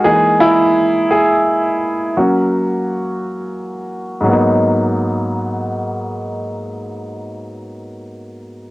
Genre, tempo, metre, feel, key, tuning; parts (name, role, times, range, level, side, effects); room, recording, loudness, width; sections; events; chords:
R&B; 57 BPM (dotted quarters); 6/8; straight; G# minor; A4 = 441 Hz
warm grand piano; accompaniment; 0.0-8.7 s; G#2 to G#4; -15 LUFS; equal; low-pass filter
light reverb; home recording on cassette; -13 LUFS; side -19 dB against mid
0.0-4.3 A section; 4.3-8.5 B section
grand piano solo 0.0-4.3; filter sweep on grand piano 0.0-4.3
0.1 Emaj7#11; 2.2 F#; 4.3 G#m9